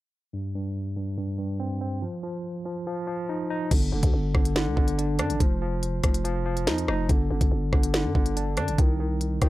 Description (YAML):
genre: hip hop, drill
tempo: 142 BPM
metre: 4/4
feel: half-time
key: unclear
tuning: A4 = 440 Hz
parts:
  - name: tine electric piano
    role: accompaniment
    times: 0.3-9.5 s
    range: G2 to Eb4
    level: -28 LUFS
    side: equal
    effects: fast stereo tremolo
  - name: growling 808-style bass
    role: bass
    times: 3.7-9.5 s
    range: F1 to G2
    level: -28 LUFS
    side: equal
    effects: none
  - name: drill drum kit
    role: drums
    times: 3.7-9.5 s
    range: crash cymbal, hi-hat, kick drum, rim click, snare drum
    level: -23 LUFS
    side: equal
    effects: none
room: little or no reverb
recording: dry, gritty hardware recording, low-pass filter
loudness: -24 LUFS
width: side -17 dB against mid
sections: 0.3-3.7 A section; 3.7-9.5 B section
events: filter sweep 0.3-3.7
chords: 0.3 Gsus4; 2.0 Ebsus2/F; 3.7 G5; 5.4 Ebsus2/F; 7.1 G5; 8.8 Cm